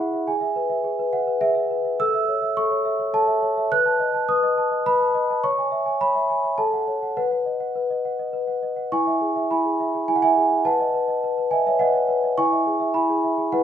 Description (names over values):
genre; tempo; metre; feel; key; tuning
classical, lullaby for celesta; 104 BPM; 3/4; straight; E major; A4 = 438 Hz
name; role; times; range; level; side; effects
large celesta; solo; 0.0-13.6 s; E4 to F#6; -19 LUFS; equal; none
room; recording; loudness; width
wet recital hall reverb, RT60 1.5 s; minimal, uncompressed stereo recording; -19 LUFS; side -9 dB against mid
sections
0.0-8.9 A section; 8.9-13.6 A section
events
none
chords
0.3 E/G#; 2.0 A; 3.7 B7; 5.4 C#m; 6.6 F#m/A; 7.2 B; 8.9 E; 10.6 B7; 12.4 E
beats
| 0.27 0.84 1.42 | 1.99 2.56 3.14 | 3.71 4.28 4.86 | 5.43 6.00 6.58 | 7.17 7.75 8.33 | 8.92 9.49 10.07 | 10.65 11.22 11.80 | 12.37 12.95 13.52